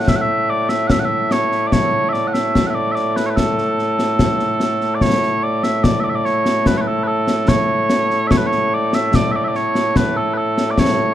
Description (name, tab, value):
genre	scottish traditional, Scottish pipe music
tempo	73 BPM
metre	2/4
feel	straight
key	A major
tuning	A4 = 440 Hz
part	mellow small bagpipes	melody	0.0-11.1 s	A2 to F#5	-17 LUFS	right 1 dB	none
part	concert snare drum and concert bass drum	drums	0.1-11.0 s	none	-19 LUFS	left 1 dB	none
room	light reverb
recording	dark, warm production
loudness	-15 LUFS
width	side -12 dB against mid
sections	0.0-5.0 A section; 5.0-11.1 A section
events	none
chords	none